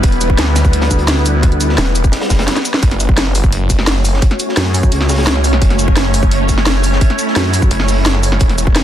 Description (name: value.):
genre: dark technical drum and bass.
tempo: 172 BPM.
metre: 4/4.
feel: straight.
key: F# phrygian.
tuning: A4 = 439 Hz.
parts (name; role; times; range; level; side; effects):
swarming drone; sustained chords; 0.0-8.8 s; G3 to E5; -18 LUFS; equal; built-in reverb, sidechain pumping.
metallic wobble bass; bass; 0.0-1.8, 4.6-5.3, 7.4-7.7 s; C#2 to F#2; -14 LUFS; equal; distortion, chorus, tube saturation.
snarling distorted saw bass; bass; 0.0-8.8 s; E1 to D2; -15 LUFS; equal; distortion, tube saturation, sidechain pumping.
crunchy breakbeat drum kit; drums; 0.0-8.8 s; hi-hat, snare drum; -26 LUFS; equal; none.
drum and bass drum kit; drums; 0.0-8.8 s; cabasa, hi-hat, snare drum; -17 LUFS; equal; small room ambience.
electronic kick drum; drums; 0.0-8.7 s; none; -12 LUFS; equal; small room ambience.
room: digital ambience.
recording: dense, heavily limited modern master.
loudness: -11 LUFS.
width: side -11 dB against mid.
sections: 0.0-2.8 A section; 2.8-8.8 A section.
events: drop 0.0-2.8, 2.8-8.8; drum fill 2.5-2.8.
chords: 0.0 Em; 2.8 F#m.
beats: | 0.04 0.38 0.73 1.08 | 1.43 1.78 2.13 2.48 | 2.83 3.17 3.52 3.87 | 4.22 4.57 4.92 5.27 | 5.62 5.97 6.32 6.66 | 7.01 7.36 7.71 8.06 | 8.41 8.76.